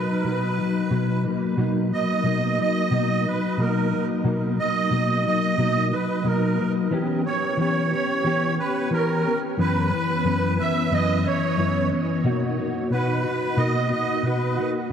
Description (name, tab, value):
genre	indie pop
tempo	90 BPM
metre	4/4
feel	straight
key	B major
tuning	A4 = 440 Hz
part	musette accordion	melody	0.0-14.7 s	A#4 to E5	-25 LUFS	right 3 dB	lush chorus, diffuse ambient delay
part	mellow electric guitar	accompaniment	0.0-14.9 s	F#2 to G4	-22 LUFS	left 1 dB	ensemble chorus, vibrato effect
room	wet cathedral reverb, RT60 5.6 s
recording	dreamy mix soaked in reverb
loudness	-20 LUFS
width	side -8 dB against mid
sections	0.0-1.6 A section; 1.6-14.9 B section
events	none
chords	0.0 Bmaj7; 6.9 Em6; 9.6 F#7sus4; 12.2 Bmaj7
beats	0.25 0.92 | 1.58 2.25 2.92 3.58 | 4.25 4.92 5.58 6.25 | 6.91 7.58 8.25 8.91 | 9.58 10.24 10.91 11.58 | 12.24 12.91 13.58 14.24 | 14.91